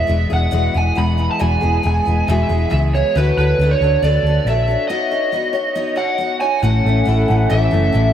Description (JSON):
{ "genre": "folk rock and heartland rock", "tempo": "138 BPM", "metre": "4/4", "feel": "straight", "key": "E mixolydian", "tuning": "A4 = 440 Hz", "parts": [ { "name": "lead guitar through a small cranked amp", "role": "melody", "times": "0.0-8.1 s", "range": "B4 to B5", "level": "-19 LUFS", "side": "right 2 dB", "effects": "overdrive, lush chorus, tape echo" }, { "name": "picked steel-string acoustic guitar", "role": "accompaniment", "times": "0.0-8.1 s", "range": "E2 to C#5", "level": "-22 LUFS", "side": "left 3 dB", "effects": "analog chorus" }, { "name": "hollow-body short-scale picked electric bass", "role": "bass", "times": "0.0-8.1 s", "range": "E1 to D2", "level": "-16 LUFS", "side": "equal", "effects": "none" }, { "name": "electric guitar through a small old amp", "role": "riff", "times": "6.6-8.1 s", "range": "A2 to E4", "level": "-20 LUFS", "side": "right 1 dB", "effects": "lush chorus" } ], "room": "moderate huge ambient reverb, RT60 4.7 s", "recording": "dreamy mix soaked in reverb", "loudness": "-14 LUFS", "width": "side -10 dB against mid", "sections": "0.0-6.6 A section; 6.6-8.1 B section", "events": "break 4.9-6.6", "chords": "0.0 E; 3.2 D; 4.9 Badd9; 6.6 A" }